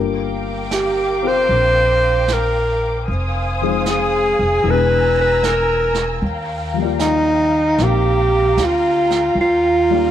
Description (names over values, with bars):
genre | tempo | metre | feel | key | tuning
jazz ballad | 76 BPM | 4/4 | swing 68% on 8ths | Eb major | A4 = 438 Hz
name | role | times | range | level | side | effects
dark baby grand piano | accompaniment | 0.0-10.1 s | Eb3 to D5 | -24 LUFS | left 13 dB | none
muted studio string section | sustained chords | 0.0-10.1 s | Bb4 to E6 | -24 LUFS | left 1 dB | none
upright bass | bass | 0.0-10.1 s | E1 to Eb2 | -22 LUFS | equal | none
breathy alto saxophone | melody | 0.7-10.1 s | Eb4 to C5 | -16 LUFS | right 1 dB | none
jazz brush drum kit | drums | 0.7-10.1 s | brushed snare drum, hi-hat, snare drum | -30 LUFS | right 8 dB | none
room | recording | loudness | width
light reverb | 1960s-style stereo with parts hard left and right | -14 LUFS | side -10 dB against mid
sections
0.0-10.1 A section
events
none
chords
0.0 Gm7; 3.1 Fm7; 4.7 E7#11; 6.2 Ebmaj9